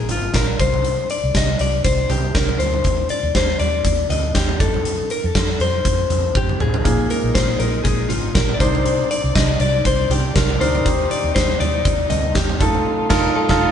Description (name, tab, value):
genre	piano-driven pop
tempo	120 BPM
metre	4/4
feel	swing 56% on 16ths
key	unclear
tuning	A4 = 441 Hz
part	direct-recorded clean electric guitar	melody	0.0-13.7 s	F4 to Eb5	-22 LUFS	left 4 dB	spring reverb, tape echo
part	vintage muted fingered electric bass	bass	0.0-13.7 s	F1 to F2	-22 LUFS	right 1 dB	none
part	huge arena drum kit	drums	0.1-13.6 s	crash cymbal, hi-hat, kick drum, snare drum, toms	-20 LUFS	right 1 dB	none
part	warm concert grand piano	accompaniment	6.8-13.7 s	Bb2 to C5	-23 LUFS	right 2 dB	none
part	warm chamber string section	sustained chords	6.8-13.7 s	Bb2 to D5	-28 LUFS	left 2 dB	none
room	moderate studio reverb, RT60 0.9 s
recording	band playing live in one room, nothing above 10.3 kHz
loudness	-16 LUFS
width	side -8 dB against mid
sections	0.0-13.7 A section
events	drum fill 6.4-6.9; band accent 12.9-13.7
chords	0.0 Absus2; 0.6 Csus2; 2.9 Cmadd9; 4.6 F; 6.9 Bb7sus4; 8.6 Cmadd9; 10.9 Eb6; 12.6 F7